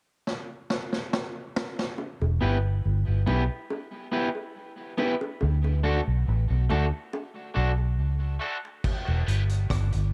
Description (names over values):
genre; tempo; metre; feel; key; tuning
dub reggae; 70 BPM; 4/4; straight; E dorian; A4 = 440 Hz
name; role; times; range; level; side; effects
vintage drum kit; drums; 0.3-2.0, 8.8-10.1 s; crash cymbal, hi-hat, kick drum, rim click, snare drum; -32 LUFS; equal; none
bongos; percussion; 2.0-9.7 s; none; -38 LUFS; equal; high-pass filter on perc, tape echo
vintage muted fingered electric bass; bass; 2.2-10.1 s; E1 to D2; -26 LUFS; equal; none
electric guitar at the edge of break-up; accompaniment; 2.4-9.4 s; A3 to B4; -33 LUFS; equal; high-pass filter, tape echo
room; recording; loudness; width
light reverb, small room ambience; dark, warm production; -27 LUFS; mono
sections
0.0-2.0 A section; 2.0-8.8 B section; 8.8-10.1 C section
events
drum fill 0.3-2.0; part muted 2.0-8.8; kick muted 5.4-8.8; filter sweep 5.4-10.1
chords
0.0 N.C.; 2.0 Em; 5.4 D; 8.8 Em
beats
0.27 1.13 | 1.99 2.85 3.70 4.56 | 5.42 6.28 7.13 7.99 | 8.85 9.71